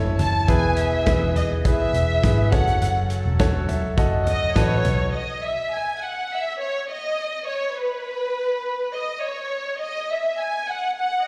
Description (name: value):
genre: piano-driven pop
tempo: 103 BPM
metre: 4/4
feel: straight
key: unclear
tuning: A4 = 440 Hz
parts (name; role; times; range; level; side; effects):
- clear baby grand piano; accompaniment; 0.0-5.2 s; B2 to A5; -28 LUFS; equal; slapback echo
- chorused pulse-width pad; sustained chords; 0.0-5.1 s; E3 to A4; -36 LUFS; equal; none
- vintage muted picked electric bass; bass; 0.0-5.1 s; E1 to B1; -25 LUFS; equal; none
- warm symphonic violin section; melody; 0.2-11.2 s; B4 to A5; -26 LUFS; equal; slapback echo, digital delay
- loose indie drum kit; drums; 0.2-5.0 s; hi-hat, kick drum, snare drum, toms; -26 LUFS; equal; none
room: light reverb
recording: live gig heard through the venue's PA, recital hall reverb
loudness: -23 LUFS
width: mono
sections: 0.0-5.1 A section; 5.1-11.3 B section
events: grand piano fill 3.4-5.1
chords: 0.5 E; 2.5 F#m; 5.1 N.C.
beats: | 0.48 1.07 1.65 2.23 | 2.81 3.40 3.98 4.56 | 5.14 5.72 6.31 6.89 | 7.47 8.05 8.63 9.22 | 9.80 10.38 10.96